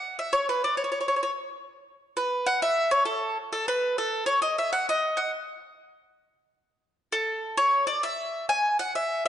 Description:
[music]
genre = italian folk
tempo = 133 BPM (dotted quarters)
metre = 6/8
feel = straight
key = A major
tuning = A4 = 443 Hz
[part]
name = bowl-back mandolin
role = solo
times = 0.0-9.3 s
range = A4 to G#5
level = -24 LUFS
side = equal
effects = none
[sound]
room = moderate scoring stage reverb, RT60 1.7 s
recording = nothing above 10.6 kHz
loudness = -24 LUFS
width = side -10 dB against mid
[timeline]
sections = 0.0-1.7 A section; 1.7-9.3 B section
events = none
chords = none

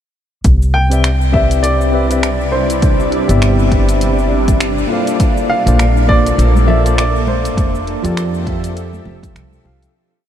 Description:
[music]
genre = sunset chillout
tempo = 101 BPM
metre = 4/4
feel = swing 58% on 16ths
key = C major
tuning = A4 = 440 Hz
[part]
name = shimmering ambient pad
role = sustained chords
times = 1.3-9.9 s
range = C3 to E5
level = -20 LUFS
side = equal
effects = chorus, built-in reverb, vintage 12-bit sampler grit
[part]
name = upright bass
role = bass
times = 0.4-9.9 s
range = F1 to F2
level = -15 LUFS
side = equal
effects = none
[part]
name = deep house drum kit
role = drums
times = 0.4-9.9 s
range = cabasa, finger snaps, hi-hat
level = -25 LUFS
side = equal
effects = overdrive
[part]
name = electronic kick drum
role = drums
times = 0.4-9.3 s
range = none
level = -15 LUFS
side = equal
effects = overdrive
[part]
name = warm baby grand piano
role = melody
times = 0.7-9.3 s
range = C5 to G5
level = -20 LUFS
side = equal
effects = analog delay
[part]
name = bright tine electric piano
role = accompaniment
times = 0.9-9.9 s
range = F3 to F5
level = -20 LUFS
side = left 1 dB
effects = auto-pan, analog delay
[part]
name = congas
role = percussion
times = 6.6-9.8 s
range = none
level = -26 LUFS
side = right 2 dB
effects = none
[sound]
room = moderate huge ambient reverb, RT60 7.1 s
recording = dreamy mix soaked in reverb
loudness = -11 LUFS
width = side -10 dB against mid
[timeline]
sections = 0.4-10.0 groove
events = fade-out 6.8-10.0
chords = 0.4 Cmaj9; 4.9 Bbmaj9; 7.6 Fmaj9

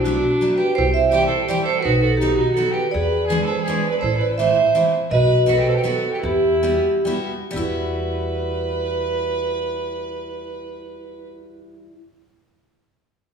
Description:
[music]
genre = musette waltz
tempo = 121-168 BPM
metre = 3/4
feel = straight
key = E minor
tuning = A4 = 440 Hz
[part]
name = vibraphone with medium hard mallets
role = melody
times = 0.0-11.9 s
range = B3 to E5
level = -20 LUFS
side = right 2 dB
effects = none
[part]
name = rich violin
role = second line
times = 0.0-11.3 s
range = D4 to C5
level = -24 LUFS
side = right 3 dB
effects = none
[part]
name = upright bass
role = bass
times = 0.0-11.9 s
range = A1 to E2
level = -25 LUFS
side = equal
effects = none
[part]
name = picked steel-string acoustic guitar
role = accompaniment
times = 0.1-11.9 s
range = D#3 to F#4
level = -28 LUFS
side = left 1 dB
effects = none
[sound]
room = wet recital hall reverb, RT60 1.3 s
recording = recorded in a church or concert hall, small room ambience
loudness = -17 LUFS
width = side -6 dB against mid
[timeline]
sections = 0.0-7.6 A section; 7.6-10.5 B section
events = slowing down 5.1-7.6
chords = 0.0 Bm7; 0.8 C; 1.9 B; 2.9 E7; 4.0 Am; 5.1 B; 6.2 Emadd9

